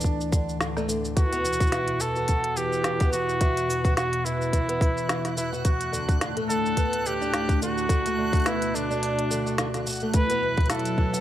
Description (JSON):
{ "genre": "folktronica", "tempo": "107 BPM", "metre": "4/4", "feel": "swing 56% on 16ths", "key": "unclear", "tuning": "A4 = 442 Hz", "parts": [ { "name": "warbly tape-like pad", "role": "sustained chords", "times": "0.0-11.2 s", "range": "D2 to A3", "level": "-30 LUFS", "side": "equal", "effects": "chorus, built-in reverb" }, { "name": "fingerpicked twelve-string acoustic guitar", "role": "arpeggios", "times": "0.0-11.2 s", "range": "D3 to F#4", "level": "-30 LUFS", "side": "equal", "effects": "none" }, { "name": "electronic kick drum", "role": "drums", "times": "0.0-11.1 s", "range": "none", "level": "-22 LUFS", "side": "equal", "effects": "none" }, { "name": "organic electronic drum kit", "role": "drums", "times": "0.0-11.2 s", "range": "hi-hat, shaker, snare drum", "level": "-30 LUFS", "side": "equal", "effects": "none" }, { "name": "clear flugelhorn", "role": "melody", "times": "1.2-11.2 s", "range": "D4 to B4", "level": "-27 LUFS", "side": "equal", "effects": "none" }, { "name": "backwards swelling texture", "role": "texture", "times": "2.7-11.2 s", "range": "E6 to F#6", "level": "-39 LUFS", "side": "right 3 dB", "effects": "built-in reverb" } ], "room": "light reverb, digital ambience", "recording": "none", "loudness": "-22 LUFS", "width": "side -12 dB against mid", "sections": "0.0-10.1 A section; 10.1-11.2 B section", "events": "break 9.0-10.1", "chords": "0.0 Bm7/D (rootless); 1.2 Esus2; 5.7 Bm7/D; 10.1 Esus2", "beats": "0.04 0.61 | 1.17 1.73 2.29 2.85 | 3.41 3.97 4.53 5.09 | 5.65 6.21 6.77 7.33 | 7.90 8.46 9.02 9.58 | 10.14 10.70" }